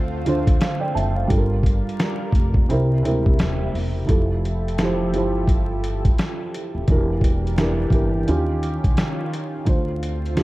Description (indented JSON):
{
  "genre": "lo-fi hip hop",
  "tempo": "86 BPM",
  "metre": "4/4",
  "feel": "swing 60% on 16ths",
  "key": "F major",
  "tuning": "A4 = 440 Hz",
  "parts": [
    { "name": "felt-muted upright piano", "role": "accompaniment", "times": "0.0-10.4 s", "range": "C3 to A5", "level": "-23 LUFS", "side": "right 1 dB", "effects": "cassette tape" },
    { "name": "lush unison pad", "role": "sustained chords", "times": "0.0-10.4 s", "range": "C3 to Bb4", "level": "-31 LUFS", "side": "equal", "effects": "chorus, phaser" },
    { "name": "upright bass", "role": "bass", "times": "0.0-10.4 s", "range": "Eb1 to Eb2", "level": "-24 LUFS", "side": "equal", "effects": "none" },
    { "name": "dusty soul sampler-style drum kit", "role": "drums", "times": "0.3-10.4 s", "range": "hi-hat, kick drum, snare drum", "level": "-20 LUFS", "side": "equal", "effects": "none" }
  ],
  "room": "light reverb",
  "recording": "dark, warm production, vinyl crackle",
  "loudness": "-18 LUFS",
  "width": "side -18 dB against mid",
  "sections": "0.0-4.1 A section; 4.1-10.4 B section",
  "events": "none",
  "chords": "0.0 Dm7; 1.3 Gm7; 2.7 C7; 4.1 Fmaj9; 6.9 Em7b5; 8.3 Eb9; 9.7 Dm7"
}